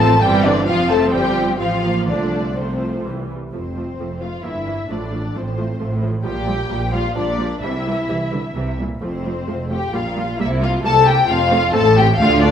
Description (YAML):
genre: quick classical-period movement for string orchestra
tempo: 131 BPM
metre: 3/4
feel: straight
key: F major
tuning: A4 = 440 Hz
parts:
  - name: muted studio violin section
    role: melody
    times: 0.0-12.5 s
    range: C5 to A5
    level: -21 LUFS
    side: left 4 dB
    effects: none
  - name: muted studio violin section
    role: second line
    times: 0.0-12.5 s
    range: C4 to A4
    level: -22 LUFS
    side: left 3 dB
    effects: none
  - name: muted studio viola section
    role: accompaniment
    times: 0.0-12.5 s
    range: E3 to C4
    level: -24 LUFS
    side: right 2 dB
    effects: none
  - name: muted studio cello section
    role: bass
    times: 0.0-12.5 s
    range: F2 to A3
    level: -24 LUFS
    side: right 3 dB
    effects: none
  - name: muted studio double bass section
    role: bass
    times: 0.0-12.5 s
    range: F1 to D2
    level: -23 LUFS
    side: right 2 dB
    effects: none
room: wet recital hall reverb, RT60 1.7 s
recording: none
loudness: -16 LUFS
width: side -8 dB against mid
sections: 0.0-3.5 A section; 3.5-12.5 B section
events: none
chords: 0.2 C/G; 0.7 F; 1.6 F/A; 2.1 F/C; 3.1 C; 3.5 F; 4.4 Edim/G; 4.9 F/A; 6.3 Gm7/Bb; 7.6 C; 9.0 F; 9.9 Gm/Bb; 10.4 C5; 11.3 F; 11.8 Am